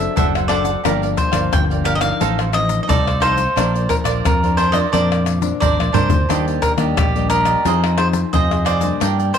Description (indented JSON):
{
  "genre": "samba and choro",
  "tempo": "88 BPM",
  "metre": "4/4",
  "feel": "straight",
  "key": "unclear",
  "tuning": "A4 = 440 Hz",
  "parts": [
    { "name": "cavaquinho", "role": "melody", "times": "0.0-9.4 s", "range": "G4 to G5", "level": "-20 LUFS", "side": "equal", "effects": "slapback echo" },
    { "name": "nylon-string guitar", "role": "accompaniment", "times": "0.0-9.4 s", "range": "G2 to A4", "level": "-24 LUFS", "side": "left 9 dB", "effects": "none" },
    { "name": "fretless electric bass", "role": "bass", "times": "0.0-9.3 s", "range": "F#1 to G2", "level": "-21 LUFS", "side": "right 1 dB", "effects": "none" },
    { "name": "cavaquinho", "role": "accompaniment", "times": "0.2-9.4 s", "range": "D4 to G5", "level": "-23 LUFS", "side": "right 10 dB", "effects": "none" },
    { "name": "egg shaker, surdo, pandeiro and tamborim", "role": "percussion", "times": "0.2-9.4 s", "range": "none", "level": "-20 LUFS", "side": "left 3 dB", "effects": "none" }
  ],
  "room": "wet spring reverb, RT60 1.3 s, studio reverb",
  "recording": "1960s-style stereo with parts hard left and right",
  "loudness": "-15 LUFS",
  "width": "side -8 dB against mid",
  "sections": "0.0-9.4 A section",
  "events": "drum fill 5.8-6.3",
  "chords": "0.0 D7/F#; 0.8 Gm7; 2.2 F7/A; 3.6 Bbadd9; 6.3 Ebmaj7; 7.7 Fm7"
}